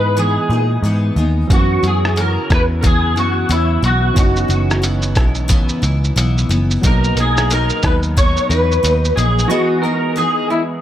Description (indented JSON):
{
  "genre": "indie pop, bedroom pop",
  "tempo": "90 BPM",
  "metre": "4/4",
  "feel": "swing 60% on 16ths",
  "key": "unclear",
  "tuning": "A4 = 440 Hz",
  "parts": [
    { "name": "electric guitar through a small old amp", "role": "melody", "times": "0.0-10.6 s", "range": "E4 to C#5", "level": "-18 LUFS", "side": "equal", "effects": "ensemble chorus, analog delay" },
    { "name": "picked steel-string acoustic guitar", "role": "accompaniment", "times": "0.0-10.8 s", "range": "F#2 to E4", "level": "-23 LUFS", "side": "left 3 dB", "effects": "lush chorus, vibrato effect" },
    { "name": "soft electric-piano-like synth keys", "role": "accompaniment", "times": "0.0-10.8 s", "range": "E3 to A#5", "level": "-25 LUFS", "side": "right 5 dB", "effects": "chorus, cassette tape" },
    { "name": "vintage muted picked electric bass", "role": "bass", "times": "0.0-9.4 s", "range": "F#1 to A#2", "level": "-16 LUFS", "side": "equal", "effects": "none" },
    { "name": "lo-fi sampler-style drum kit", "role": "drums", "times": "1.5-9.5 s", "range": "hi-hat, kick drum, rim click, shaker", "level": "-17 LUFS", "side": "equal", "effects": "none" }
  ],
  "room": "light reverb",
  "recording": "none",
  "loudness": "-13 LUFS",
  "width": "side -11 dB against mid",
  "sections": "0.0-10.8 A section",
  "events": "break 9.5-10.8",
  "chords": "0.0 Emaj7; 1.5 F#7sus4; 6.8 Bmaj7; 9.5 Emaj7"
}